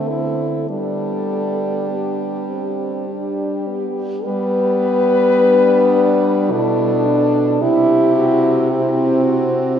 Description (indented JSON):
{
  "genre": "classical, lyrical piece for horn quartet",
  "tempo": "49-57 BPM",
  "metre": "3/4",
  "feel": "rubato",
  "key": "G major",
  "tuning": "A4 = 442 Hz",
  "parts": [
    { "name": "mellow French horn", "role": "melody", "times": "0.0-9.8 s", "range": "E4 to B4", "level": "-19 LUFS", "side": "left 4 dB", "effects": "none" },
    { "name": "mellow French horn", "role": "second line", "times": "0.0-9.8 s", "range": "B3 to G4", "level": "-22 LUFS", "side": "right 4 dB", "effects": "none" },
    { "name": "clear French horn", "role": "accompaniment", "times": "0.0-9.8 s", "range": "A3 to E4", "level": "-20 LUFS", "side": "equal", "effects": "none" },
    { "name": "warm French horn", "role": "bass", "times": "0.0-9.8 s", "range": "B2 to G3", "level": "-22 LUFS", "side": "right 3 dB", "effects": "none" }
  ],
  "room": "wet cathedral reverb, RT60 5.2 s",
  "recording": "heard from further back in the room",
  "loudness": "-14 LUFS",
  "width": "side -9 dB against mid",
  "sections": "0.0-4.3 A section; 4.3-9.8 B section",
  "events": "none",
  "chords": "0.0 Dsus2; 0.7 G; 7.6 C"
}